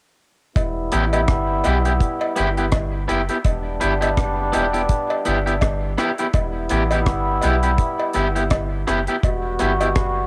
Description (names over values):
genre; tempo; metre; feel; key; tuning
roots reggae; 83 BPM; 4/4; swing 58% on 16ths; E minor; A4 = 440 Hz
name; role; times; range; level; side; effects
muted trombone section; second line; 0.6-10.3 s; G3 to F#4; -26 LUFS; equal; cassette tape, tape echo
soft dub sub bass; bass; 0.6-10.3 s; E1 to B1; -26 LUFS; equal; none
deep reggae drum kit; drums; 0.6-10.2 s; hi-hat, kick drum, rim click; -24 LUFS; equal; cassette tape
cowbell; percussion; 0.6-9.9 s; none; -30 LUFS; equal; none
electric guitar at the edge of break-up; accompaniment; 0.9-9.9 s; B3 to G4; -25 LUFS; equal; cassette tape, tape echo
room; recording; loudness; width
light reverb, small room ambience; home recording on cassette; -20 LUFS; mono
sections
0.6-10.3 A section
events
none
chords
0.6 Em